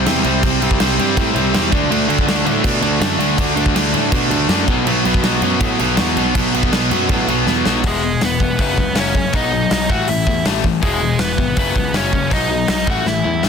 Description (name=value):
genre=punk rock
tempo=162 BPM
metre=4/4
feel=straight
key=unclear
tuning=A4 = 439 Hz
part: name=overdriven electric guitar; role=riff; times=0.0-7.8 s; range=B2 to D4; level=-19 LUFS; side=right 17 dB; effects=none
part: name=tight distorted guitar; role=riff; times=0.0-13.5 s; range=E2 to D4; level=-19 LUFS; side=left 15 dB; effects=distortion
part: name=fuzz picked electric bass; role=bass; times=0.0-13.5 s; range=E1 to B2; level=-22 LUFS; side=equal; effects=overdrive
part: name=big rock drum kit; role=drums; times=0.1-13.5 s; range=crash cymbal, hi-hat, kick drum, snare drum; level=-19 LUFS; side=equal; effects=none
part: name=biting lead guitar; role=melody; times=7.9-13.4 s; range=G#3 to F#5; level=-20 LUFS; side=right 2 dB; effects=overdrive
room=little or no reverb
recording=dense, heavily limited modern master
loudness=-14 LUFS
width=side -6 dB against mid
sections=0.0-7.8 A section; 7.8-13.5 B section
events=drum fill 7.5-7.8, 13.1-13.5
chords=0.0 C; 1.7 D; 4.7 B5; 7.8 E; 8.6 F#5; 9.3 B; 9.9 A5; 10.8 E; 11.6 F#5; 12.3 B; 12.9 A5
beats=0.06 | 0.43 0.80 1.17 1.54 | 1.91 2.28 2.65 3.02 | 3.39 3.76 4.13 4.50 | 4.87 5.24 5.61 5.99 | 6.36 6.73 7.10 7.47 | 7.84 8.21 8.59 8.96 | 9.33 9.71 10.08 10.45 | 10.83 11.20 11.57 11.95 | 12.32 12.69 13.06 13.44